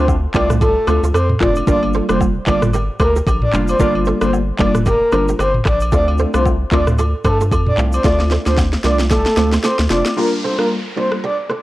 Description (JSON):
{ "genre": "afrobeats", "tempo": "113 BPM", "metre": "4/4", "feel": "swing 58% on 16ths", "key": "G minor", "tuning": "A4 = 441 Hz", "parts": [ { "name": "breathy flute-like synth lead", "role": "melody", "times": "0.0-11.4 s", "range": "A4 to D5", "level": "-20 LUFS", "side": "equal", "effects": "chorus, tape echo" }, { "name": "warm analog keys", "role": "accompaniment", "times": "0.0-11.2 s", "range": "G3 to F4", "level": "-20 LUFS", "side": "equal", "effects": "chorus, phaser" }, { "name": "round analog bass", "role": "bass", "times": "0.0-10.0 s", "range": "F1 to G2", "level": "-18 LUFS", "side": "equal", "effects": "none" }, { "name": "afro-pop drum kit", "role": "drums", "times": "0.1-11.6 s", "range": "handclaps, kick drum, rim click, shaker, snare drum, toms", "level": "-19 LUFS", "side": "equal", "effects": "none" }, { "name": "woodblock and agogo bells", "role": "percussion", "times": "0.1-10.2 s", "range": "none", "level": "-27 LUFS", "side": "left 1 dB", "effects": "none" }, { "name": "kora", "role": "riff", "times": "0.4-11.6 s", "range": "F4 to D5", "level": "-25 LUFS", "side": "right 4 dB", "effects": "tape echo" }, { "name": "downlifter", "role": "sound effects", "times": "10.2-11.6 s", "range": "none", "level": "-28 LUFS", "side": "equal", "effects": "none" } ], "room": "little or no reverb", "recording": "dry, gritty hardware recording, cassette tape", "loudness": "-13 LUFS", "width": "side -16 dB against mid", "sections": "0.0-10.2 A section; 10.2-11.6 B section", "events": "drum fill 8.0-10.2", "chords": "0.0 Gm7" }